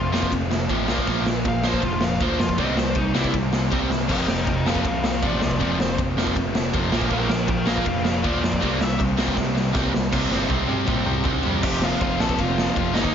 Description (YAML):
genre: punk rock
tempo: 159 BPM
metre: 4/4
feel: straight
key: unclear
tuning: A4 = 440 Hz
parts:
  - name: biting lead guitar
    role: melody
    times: 0.0-9.0, 11.6-13.1 s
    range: Eb4 to A5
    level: -28 LUFS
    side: left 2 dB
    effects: overdrive
  - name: distorted electric guitar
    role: riff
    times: 0.0-13.1 s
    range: F2 to Eb4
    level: -28 LUFS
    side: left 12 dB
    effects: overdrive
  - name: fuzz guitar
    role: riff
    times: 0.0-13.1 s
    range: F2 to Eb4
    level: -30 LUFS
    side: equal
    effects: distortion
  - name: overdriven semi-hollow guitar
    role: riff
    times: 0.0-13.1 s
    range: F2 to Eb4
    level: -27 LUFS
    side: right 10 dB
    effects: none
  - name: overdriven picked electric bass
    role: bass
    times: 0.0-13.1 s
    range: F1 to Bb2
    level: -28 LUFS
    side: equal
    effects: none
  - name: raw garage drum kit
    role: drums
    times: 0.1-13.1 s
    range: crash cymbal, kick drum, ride cymbal, snare drum, toms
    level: -24 LUFS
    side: equal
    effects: none
room: light reverb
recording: nothing above 7.5 kHz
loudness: -20 LUFS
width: side -8 dB against mid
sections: 0.0-10.1 A section; 10.1-11.6 B section; 11.6-13.1 C section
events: lead electric guitar solo 0.0-10.1; drum fill 3.9, 9.4-10.1, 10.1-11.6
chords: 0.0 F; 0.9 Bb5; 2.6 C5; 4.1 F5; 6.9 Bb5; 8.6 C5; 11.6 F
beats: 0.32 0.69 | 1.07 1.45 1.83 2.21 | 2.58 2.96 3.34 3.71 | 4.09 4.47 4.85 5.22 | 5.60 5.98 6.36 6.73 | 7.11 7.49 7.87 8.24 | 8.62 9.00 9.37 9.75 | 10.13 10.50 10.88 11.26 | 11.63 12.01 12.38 12.76 | 13.13